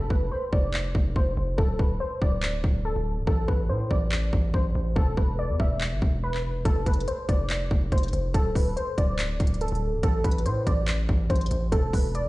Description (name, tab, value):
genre	hip hop, trap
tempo	142 BPM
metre	4/4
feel	half-time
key	unclear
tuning	A4 = 439 Hz
part	warbly dusty pluck	melody	0.0-12.3 s	A4 to E5	-30 LUFS	equal	chorus, low-pass filter, tape echo
part	distorted 808-style bass	bass	0.0-12.3 s	C1 to A2	-27 LUFS	equal	distortion
part	trap drum kit	drums	0.1-12.3 s	handclaps, hi-hat, kick drum	-24 LUFS	equal	none
room	little or no reverb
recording	played on a big sound system in a bare room, stone room reverb, nothing above 10.6 kHz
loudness	-23 LUFS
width	side -19 dB against mid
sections	0.0-12.3 A section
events	break 0.0-6.7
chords	0.0 F5; 1.6 D5; 3.3 Am; 5.0 E5; 6.7 F5; 8.3 D5; 10.0 Am; 11.7 E5